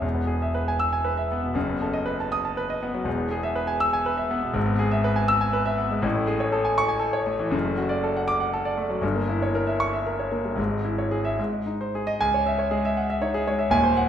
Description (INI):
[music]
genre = classical, virtuoso piano study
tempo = 80 BPM (dotted quarters)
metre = 6/8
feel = rubato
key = E major, C# minor from 6.0 s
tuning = A4 = 440 Hz
[part]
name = warm concert grand piano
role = solo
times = 0.0-14.1 s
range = D#1 to E6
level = -22 LUFS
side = equal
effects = none
[sound]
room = wet recital hall reverb, RT60 1.6 s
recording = minimal, uncompressed stereo recording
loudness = -22 LUFS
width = side -9 dB against mid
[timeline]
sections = 0.0-12.2 A section; 12.2-14.1 B section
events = none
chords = 0.0 E; 1.6 B7/F#; 3.1 E; 4.6 E/G#; 6.0 Amaj7; 7.5 D/F#; 9.0 Gdim7; 10.6 C#m/G#; 11.4 G#; 12.2 C#m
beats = | 0.03 0.80 | 1.55 2.31 | 3.06 3.81 | 4.55 5.30 | 6.04 6.78 | 7.53 8.28 | 9.03 9.79 | 10.58 11.38 | 12.19 12.96 | 13.72